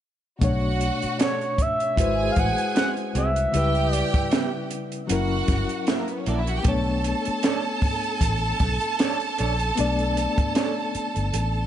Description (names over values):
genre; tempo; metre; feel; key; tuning
lush 1970s-style soul; 77 BPM; 4/4; swing 54% on 16ths; B minor; A4 = 440 Hz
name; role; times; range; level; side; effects
rich studio violin section; second line; 0.4-11.7 s; A#3 to A5; -28 LUFS; right 3 dB; none
reed electric piano; accompaniment; 0.4-11.7 s; B2 to D5; -28 LUFS; left 4 dB; overdrive, fast tremolo
vintage muted fingered electric bass; bass; 0.4-11.6 s; F#1 to C#2; -26 LUFS; equal; none
compact cocktail drum kit; drums; 0.4-11.5 s; hi-hat, kick drum, snare drum; -25 LUFS; right 1 dB; none
expressive synth lead; melody; 1.2-4.3 s; C#5 to F#5; -26 LUFS; right 1 dB; chorus, analog delay
electric guitar through a small old amp; riff; 1.2-10.7 s; A#3 to C#5; -32 LUFS; right 6 dB; none
room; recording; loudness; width
light reverb, small room ambience; nothing above 10.5 kHz; -21 LUFS; side -10 dB against mid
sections
0.4-11.7 A section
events
none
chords
0.4 Bm9; 2.0 G#7alt; 3.5 C#m7b5; 5.1 F#7; 6.7 Bm9